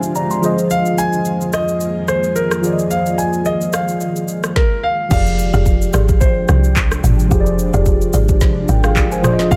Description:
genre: amapiano.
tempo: 109 BPM.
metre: 4/4.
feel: swing 55% on 16ths.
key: F dorian.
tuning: A4 = 441 Hz.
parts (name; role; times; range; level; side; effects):
mellow tine electric piano; accompaniment; 0.0-9.6 s; F3 to C6; -21 LUFS; equal; analog chorus.
ethereal airy pad; sustained chords; 0.0-9.6 s; F2 to G5; -28 LUFS; equal; ensemble chorus, built-in reverb, tremolo, sidechain pumping.
afro-pop drum kit; drums; 0.0-9.6 s; crash cymbal, handclaps, kick drum, rim click, shaker, snare drum, toms; -20 LUFS; equal; none.
warm concert grand piano; melody; 0.7-9.6 s; Bb4 to Ab5; -23 LUFS; equal; tape echo.
woody log drum bass; bass; 5.1-9.6 s; F1 to C2; -18 LUFS; equal; none.
folk marimba with medium mallets; stabs; 5.5-8.3 s; G4 to D5; -28 LUFS; equal; tape echo.
room: digital ambience.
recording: none.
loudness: -16 LUFS.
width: mono.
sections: 0.0-5.1 A section; 5.1-9.6 B section.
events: none.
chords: 0.4 Bb7sus4/F; 5.1 Fm69.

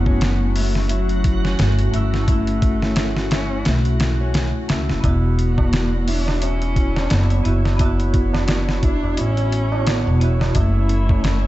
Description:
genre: trip hop.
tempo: 87 BPM.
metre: 4/4.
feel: swing 57% on 16ths.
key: E dorian.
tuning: A4 = 439 Hz.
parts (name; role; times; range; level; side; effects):
dark cello; melody; 0.0-11.5 s; F#3 to D4; -26 LUFS; equal; vintage 12-bit sampler grit, dub echo.
vibraphone with medium mallets; accompaniment; 0.0-11.5 s; A3 to F#4; -27 LUFS; equal; tremolo, tape echo.
deep dark ambient pad; sustained chords; 0.0-11.5 s; F#3 to C#5; -31 LUFS; right 1 dB; chorus, built-in reverb.
nylon-string guitar; arpeggios; 0.0-11.5 s; C#4 to E4; -33 LUFS; equal; tape echo.
upright bass; bass; 0.0-11.5 s; E1 to C#2; -19 LUFS; equal; none.
backwards swelling texture; texture; 0.0-11.5 s; E4 to F#4; -34 LUFS; equal; built-in reverb.
dusty soul sampler-style drum kit; drums; 0.1-11.4 s; hi-hat, kick drum, snare drum; -21 LUFS; equal; none.
tabla; percussion; 5.0-11.5 s; none; -31 LUFS; right 2 dB; none.
room: small room reverb.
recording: dark, warm production, nothing above 8.0 kHz.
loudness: -16 LUFS.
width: side -16 dB against mid.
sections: 0.0-11.5 A section.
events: none.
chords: 0.0 F#m7; 5.0 Esus2; 10.6 F#m7.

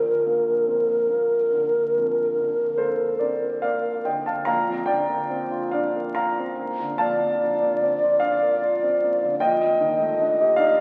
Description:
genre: classical, impressionist duo for alto flute and grand piano.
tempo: 46-52 BPM (dotted quarters).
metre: 12/8.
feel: rubato.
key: Bb major.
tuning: A4 = 441 Hz.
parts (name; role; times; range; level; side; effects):
mellow hollow wooden-headed alto flute; melody; 0.0-10.8 s; Bb4 to Eb5; -23 LUFS; equal; none.
warm concert grand piano; accompaniment; 0.0-10.8 s; Bb1 to Bb5; -28 LUFS; equal; none.
room: wet concert hall reverb, RT60 2.4 s.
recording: very old 78 rpm record, vinyl crackle.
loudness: -23 LUFS.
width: mono.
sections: 0.0-4.5 A section; 4.5-10.8 A section.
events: none.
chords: 0.0 Bbadd9; 4.5 Bbmaj9; 9.4 Ebmaj7#11/Bb.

